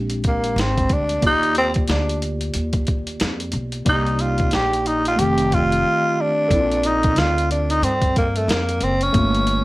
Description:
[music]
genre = hip hop, jazz-hop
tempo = 91 BPM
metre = 4/4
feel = swing 59% on 16ths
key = unclear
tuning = A4 = 440 Hz
[part]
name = tine electric piano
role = accompaniment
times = 0.0-9.6 s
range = Eb3 to D5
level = -25 LUFS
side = equal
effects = medium stereo tremolo
[part]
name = upright bass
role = bass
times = 0.0-9.6 s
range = F1 to G2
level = -24 LUFS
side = equal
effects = none
[part]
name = boom bap sampler-style drum kit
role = drums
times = 0.1-9.6 s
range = hi-hat, kick drum, snare drum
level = -23 LUFS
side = equal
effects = none
[part]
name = growling tenor saxophone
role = melody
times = 0.3-9.6 s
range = A3 to G4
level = -19 LUFS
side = equal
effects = slapback echo
[sound]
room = light reverb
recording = vinyl crackle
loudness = -17 LUFS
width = side -19 dB against mid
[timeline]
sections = 0.0-9.6 A section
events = tenor saxophone solo 0.0-9.6; drums muted 5.8-6.5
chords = 0.0 Bb13; 1.2 Ebmaj9; 3.9 Cm7; 5.2 F9; 6.5 Bbmaj7

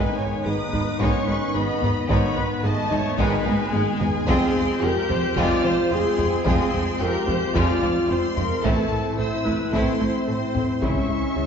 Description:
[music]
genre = cinematic, hybrid orchestral and electronic film score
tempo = 110 BPM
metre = 4/4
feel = straight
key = unclear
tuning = A4 = 436 Hz
[part]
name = warm symphonic violin section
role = melody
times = 0.0-11.5 s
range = G#5 to G6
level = -31 LUFS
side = left 3 dB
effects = none
[part]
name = clear studio violin section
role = second line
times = 0.0-11.4 s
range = G#3 to C5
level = -32 LUFS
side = left 3 dB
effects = none
[part]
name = rich symphonic viola section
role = accompaniment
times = 0.0-11.5 s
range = G#4 to E5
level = -28 LUFS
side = right 2 dB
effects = none
[part]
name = brassy analog pad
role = sustained chords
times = 0.0-11.5 s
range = D#3 to E5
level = -30 LUFS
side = equal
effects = chorus
[part]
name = bright trombone section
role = sustained chords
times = 0.0-11.0 s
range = D#3 to C#4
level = -31 LUFS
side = right 2 dB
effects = none
[part]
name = warm French horn section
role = sustained chords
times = 0.0-11.5 s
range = G#3 to G4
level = -27 LUFS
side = left 2 dB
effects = none
[part]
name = woody wave-folded pluck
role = arpeggios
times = 0.0-11.5 s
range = C#3 to A4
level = -32 LUFS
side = left 3 dB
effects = none
[part]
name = rubbery square bass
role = riff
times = 0.0-11.5 s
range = C#2 to A3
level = -30 LUFS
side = right 2 dB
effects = none
[part]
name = clear symphonic cello section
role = bass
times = 0.5-11.4 s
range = F2 to C#3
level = -30 LUFS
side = right 2 dB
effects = none
[part]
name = rich symphonic double bass section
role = bass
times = 0.5-11.5 s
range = F1 to C#2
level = -31 LUFS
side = right 2 dB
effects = none
[part]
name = taiko ensemble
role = drums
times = 0.7-11.3 s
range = none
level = -29 LUFS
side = equal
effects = none
[sound]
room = wet scoring stage reverb, RT60 1.8 s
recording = heard from further back in the room, nothing above 7.7 kHz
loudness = -20 LUFS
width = side -7 dB against mid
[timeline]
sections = 0.0-11.5 A section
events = drum fill 3.5-4.3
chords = 0.0 G#m; 4.3 Fm; 8.6 Am; 10.8 C#m

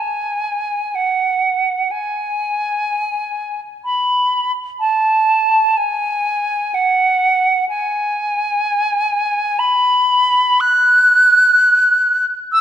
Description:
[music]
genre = classical, free, expressive piece for unaccompanied flute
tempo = free time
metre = none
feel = none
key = unclear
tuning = A4 = 440 Hz
[part]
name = silver concert flute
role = solo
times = 0.0-12.6 s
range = F#5 to F#6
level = -13 LUFS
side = equal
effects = none
[sound]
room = moderate scoring stage reverb, RT60 1.9 s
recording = none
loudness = -13 LUFS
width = side -10 dB against mid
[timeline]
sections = 0.0-12.6 A section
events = none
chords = none

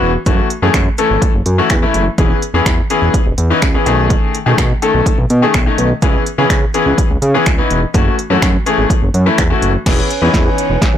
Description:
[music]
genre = dance-pop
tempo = 125 BPM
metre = 4/4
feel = straight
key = E major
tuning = A4 = 439 Hz
[part]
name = bright concert grand piano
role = accompaniment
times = 0.0-10.7 s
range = D#3 to A4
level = -15 LUFS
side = left 4 dB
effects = sidechain pumping
[part]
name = fat analog bass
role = bass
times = 0.0-11.0 s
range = E1 to C#3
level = -15 LUFS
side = right 1 dB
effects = tube saturation, sidechain pumping
[part]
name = deep house drum kit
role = drums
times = 0.3-10.9 s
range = crash cymbal, finger snaps, hi-hat, kick drum, snare drum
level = -14 LUFS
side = equal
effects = soft clipping on snare
[part]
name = hollow small flute group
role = sustained chords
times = 9.9-11.0 s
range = C#4 to G#5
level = -20 LUFS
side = right 5 dB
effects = sidechain pumping
[sound]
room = light reverb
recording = blown-out, overdriven recording, overdrive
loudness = -11 LUFS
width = side -10 dB against mid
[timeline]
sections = 0.0-9.9 A section; 9.9-11.0 B section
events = build-up 9.9-11.0; drum fill 9.9-11.0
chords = 0.3 F#m7; 2.2 E6; 3.9 B13; 6.0 C#m7; 7.9 F#m7; 9.9 E6

